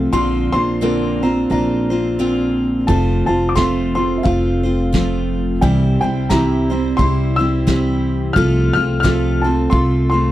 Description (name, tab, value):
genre	acoustic folk duo or small band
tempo	88 BPM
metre	4/4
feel	swing 58% on 8ths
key	unclear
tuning	A4 = 440 Hz
part	picked steel-string acoustic guitar	accompaniment	0.0-10.3 s	Bb2 to C5	-19 LUFS	left 3 dB	none
part	felt-muted upright piano	arpeggios	0.0-10.3 s	F3 to Bb4	-22 LUFS	right 7 dB	none
part	upright bass	bass	0.0-10.3 s	F1 to C2	-20 LUFS	equal	none
part	dark upright piano	melody	0.1-10.3 s	E5 to F6	-22 LUFS	left 2 dB	none
part	vintage brush drum kit	drums	2.9-9.9 s	kick drum, snare drum	-19 LUFS	equal	none
room	little or no reverb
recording	none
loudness	-14 LUFS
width	side -14 dB against mid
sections	0.0-10.3 A section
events	none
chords	0.1 Bbadd9; 2.9 F; 5.6 C; 8.4 F/C